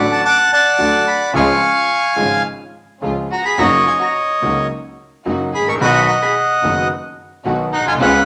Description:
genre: tango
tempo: 109 BPM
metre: 4/4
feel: rubato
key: unclear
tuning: A4 = 439 Hz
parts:
  - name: bandoneon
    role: melody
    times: 0.0-8.3 s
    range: B4 to D6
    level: -16 LUFS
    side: equal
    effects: none
  - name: warm concert grand piano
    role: accompaniment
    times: 0.0-8.2 s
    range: F#1 to F#4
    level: -23 LUFS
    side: equal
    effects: none
  - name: warm studio string section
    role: stabs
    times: 0.0-8.2 s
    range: G#3 to F#4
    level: -29 LUFS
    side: equal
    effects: none
  - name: clear double bass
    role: bass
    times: 0.0-8.2 s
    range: F#1 to D2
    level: -28 LUFS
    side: equal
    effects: none
  - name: warm studio violin section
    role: second line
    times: 3.3-8.3 s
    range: C#4 to A#4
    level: -23 LUFS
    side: equal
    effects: none
room: wet large studio reverb, RT60 1.1 s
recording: none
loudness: -16 LUFS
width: mono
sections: 0.0-8.3 A section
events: none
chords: 0.0 D; 1.3 C#; 3.6 F#6; 5.8 B

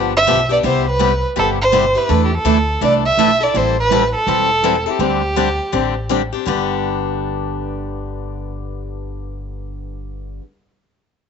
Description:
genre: acoustic string swing (jazz manouche)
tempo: 165 BPM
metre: 4/4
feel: swing 62% on 8ths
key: G major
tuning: A4 = 440 Hz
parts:
  - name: picked steel-string acoustic guitar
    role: accompaniment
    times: 0.0-10.4 s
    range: G2 to A4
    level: -23 LUFS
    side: right 12 dB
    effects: none
  - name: picked swing-style acoustic guitar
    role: accompaniment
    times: 0.0-10.4 s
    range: G2 to A4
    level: -21 LUFS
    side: left 14 dB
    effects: none
  - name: upright bass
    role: bass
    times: 0.0-10.4 s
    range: E1 to E2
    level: -23 LUFS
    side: left 1 dB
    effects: none
  - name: warm violin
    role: melody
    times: 0.2-6.1 s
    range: G4 to E5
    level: -16 LUFS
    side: right 2 dB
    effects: none
room: moderate spring reverb, RT60 1.5 s, small room ambience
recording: 1960s-style stereo with parts hard left and right, nothing above 7.9 kHz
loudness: -14 LUFS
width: side -7 dB against mid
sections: 0.6-6.5 A section; 6.5-9.4 B section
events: none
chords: 0.0 G7; 0.6 Cmaj7; 2.1 E7sus4; 3.5 Am7; 5.0 D7sus4; 6.5 G

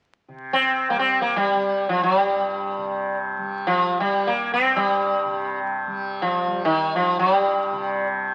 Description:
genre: indian classical, Hindustani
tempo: free time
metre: none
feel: none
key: unclear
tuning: A4 = 440 Hz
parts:
  - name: tanpura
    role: drone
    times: 0.3-8.3 s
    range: G2 to G3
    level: -31 LUFS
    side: equal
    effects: none
  - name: sitar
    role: melody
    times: 0.5-8.1 s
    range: Eb3 to C4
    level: -23 LUFS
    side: equal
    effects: none
room: moderate club reverb, RT60 0.7 s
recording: very old 78 rpm record, vinyl crackle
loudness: -22 LUFS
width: mono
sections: 0.3-8.3 A section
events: none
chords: none

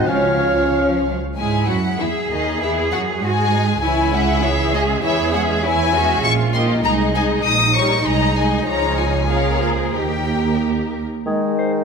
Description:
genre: quick classical-period movement for symphony orchestra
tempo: 90-100 BPM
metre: 2/4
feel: rubato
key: C# minor, Ab major from 6.3 s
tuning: A4 = 440 Hz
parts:
  - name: warm chamber violin section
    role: melody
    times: 0.0-10.6 s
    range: D#5 to Eb6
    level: -22 LUFS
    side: left 4 dB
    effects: none
  - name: bright clarinet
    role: second line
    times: 0.0-1.0, 11.3-11.7 s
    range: Db4 to C5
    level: -27 LUFS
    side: left 4 dB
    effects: none
  - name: mellow hollow small flute group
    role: second line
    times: 0.0-1.0, 11.3-11.8 s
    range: Db5 to Eb5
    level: -27 LUFS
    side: right 3 dB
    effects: none
  - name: warm oboe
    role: second line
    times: 0.0-1.1 s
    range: F5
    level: -26 LUFS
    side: right 1 dB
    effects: none
  - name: warm studio violin section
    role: second line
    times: 0.0-11.1 s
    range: D#4 to E5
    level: -24 LUFS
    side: left 4 dB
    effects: none
  - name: mellow bassoon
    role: accompaniment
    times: 0.0-1.0, 11.3-11.8 s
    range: Eb3 to Db4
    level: -22 LUFS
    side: right 2 dB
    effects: none
  - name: warm studio viola section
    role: accompaniment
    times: 0.0-11.1 s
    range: D#3 to G4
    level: -24 LUFS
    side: right 3 dB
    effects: none
  - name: mellow French horn section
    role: sustained chords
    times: 0.0-1.1, 11.3-11.8 s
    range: Ab3 to F4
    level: -22 LUFS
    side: left 5 dB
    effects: none
  - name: dark studio double bass section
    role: bass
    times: 0.0-11.1 s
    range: Bb1 to G#2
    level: -22 LUFS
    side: right 3 dB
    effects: none
  - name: rich chamber cello section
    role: bass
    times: 0.0-10.9 s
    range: Db3 to G#4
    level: -24 LUFS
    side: right 1 dB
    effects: none
  - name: timpani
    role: percussion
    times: 0.1-1.0 s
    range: Db3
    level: -34 LUFS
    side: left 3 dB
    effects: none
room: moderate scoring stage reverb, RT60 2.1 s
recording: none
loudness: -16 LUFS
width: side -5 dB against mid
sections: 0.0-1.4 A section; 1.4-11.3 B section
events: none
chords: 0.1 Db; 1.4 Emaj9; 2.6 G#5; 3.8 C#m; 5.0 C#m/E; 6.3 Eb/Bb; 6.8 Ab/C; 7.4 Gdim/Bb; 8.1 Ab/C; 8.7 Db; 9.3 Bbm/Db; 9.9 Eb; 11.3 Ab/Eb

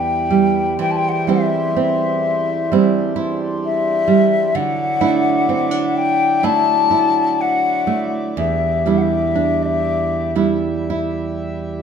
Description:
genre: celtic folk, Celtic slow air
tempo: 53-67 BPM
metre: 4/4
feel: rubato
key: E minor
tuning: A4 = 438 Hz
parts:
  - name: breathy mellow wooden flute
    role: melody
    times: 0.0-10.3 s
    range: D5 to A5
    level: -18 LUFS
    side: left 6 dB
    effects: none
  - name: nylon-string guitar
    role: accompaniment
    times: 0.0-11.8 s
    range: E2 to E4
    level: -18 LUFS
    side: right 6 dB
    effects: none
  - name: pedal harmonium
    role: sustained chords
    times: 0.0-11.8 s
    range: E2 to E5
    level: -25 LUFS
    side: right 1 dB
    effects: none
room: moderate recital hall reverb, RT60 1.3 s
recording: minimal, uncompressed stereo recording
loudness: -15 LUFS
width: side -7 dB against mid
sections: 0.0-11.8 A section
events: none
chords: 0.0 Em; 0.8 C/E; 4.5 Dadd9; 8.4 Em7

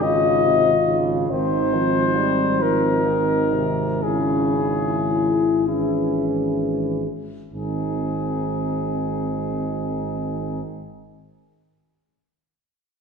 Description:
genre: classical, hymn-like piece for brass band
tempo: 30-48 BPM (dotted quarters)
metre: 6/8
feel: rubato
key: Ab major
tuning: A4 = 444 Hz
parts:
  - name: mellow flugelhorn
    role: melody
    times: 0.0-10.6 s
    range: Fb4 to Eb5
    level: -23 LUFS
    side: left 6 dB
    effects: none
  - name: dark French horn section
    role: second line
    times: 0.0-10.6 s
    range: Eb4 to Ab4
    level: -25 LUFS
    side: right 1 dB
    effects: none
  - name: clear trombone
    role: accompaniment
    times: 0.0-10.6 s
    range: C3 to G3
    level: -28 LUFS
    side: right 4 dB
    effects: none
  - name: mellow euphonium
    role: accompaniment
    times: 0.0-10.6 s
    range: C4 to Fb4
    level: -28 LUFS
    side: equal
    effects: none
  - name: mellow tuba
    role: bass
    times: 0.0-10.6 s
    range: Ab1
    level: -27 LUFS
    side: right 2 dB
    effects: none
room: wet scoring stage reverb, RT60 1.7 s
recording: heard from further back in the room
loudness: -19 LUFS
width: side -5 dB against mid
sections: 0.0-7.5 A section; 7.5-10.9 B section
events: slowing down 0.0-7.5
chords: 0.0 Eb7(no3)/Ab; 1.3 Ab; 4.0 Dbm/Ab; 7.5 Ab

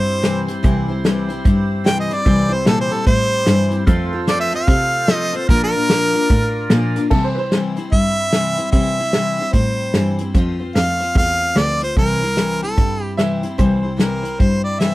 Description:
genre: honky-tonk and classic country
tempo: 148 BPM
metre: 4/4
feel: swing 61% on 8ths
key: C mixolydian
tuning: A4 = 441 Hz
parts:
  - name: clear harmonica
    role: melody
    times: 0.0-14.9 s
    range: A4 to G5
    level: -19 LUFS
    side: right 1 dB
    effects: none
  - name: percussive tonewheel organ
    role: accompaniment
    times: 0.0-7.1 s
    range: E4 to D5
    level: -28 LUFS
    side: right 4 dB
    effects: slow rotary speaker
  - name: picked steel-string acoustic guitar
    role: accompaniment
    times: 0.0-14.9 s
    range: Bb2 to C5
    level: -22 LUFS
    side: left 4 dB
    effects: none
  - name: rich cello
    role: bass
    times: 0.0-14.9 s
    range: C2 to C3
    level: -21 LUFS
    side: equal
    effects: none
  - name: unplugged drum kit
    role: drums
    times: 0.2-14.9 s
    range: crash cymbal, hi-hat, kick drum, snare drum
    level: -16 LUFS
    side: equal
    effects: none
  - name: bright upright piano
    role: second line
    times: 7.1-7.6, 13.2-13.9 s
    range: A4 to E5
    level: -23 LUFS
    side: right 3 dB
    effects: none
room: little or no reverb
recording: dry, close 1970s-style studio recording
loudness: -15 LUFS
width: side -18 dB against mid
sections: 0.0-7.1 A section; 7.1-14.9 B section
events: harmonica solo 0.0-7.1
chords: 0.0 C; 3.9 F; 5.5 Bb; 7.1 C; 10.3 F; 12.0 C

